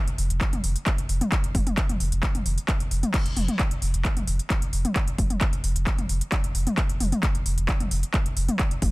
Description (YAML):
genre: driving peak-time techno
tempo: 132 BPM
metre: 4/4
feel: straight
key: unclear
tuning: A4 = 440 Hz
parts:
  - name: saturated sub bass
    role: bass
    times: 0.1-8.9 s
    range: F1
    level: -26 LUFS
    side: equal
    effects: sidechain pumping, low-pass filter
  - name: techno drum kit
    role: drums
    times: 0.1-8.9 s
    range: crash cymbal, handclaps, hi-hat, toms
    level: -28 LUFS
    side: left 1 dB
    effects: overdrive, sidechain pumping on hats, sidechain pumping on toms, sidechain pumping on cymbals
  - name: electronic kick drum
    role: drums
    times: 0.4-8.9 s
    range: none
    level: -25 LUFS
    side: equal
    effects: overdrive
room: little or no reverb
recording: dense, heavily limited modern master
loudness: -22 LUFS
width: side -22 dB against mid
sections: 0.0-8.9 A section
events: none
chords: none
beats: 0.41 0.87 | 1.32 1.77 2.23 2.68 | 3.14 3.59 4.05 4.50 | 4.96 5.41 5.87 6.32 | 6.78 7.23 7.68 8.14 | 8.59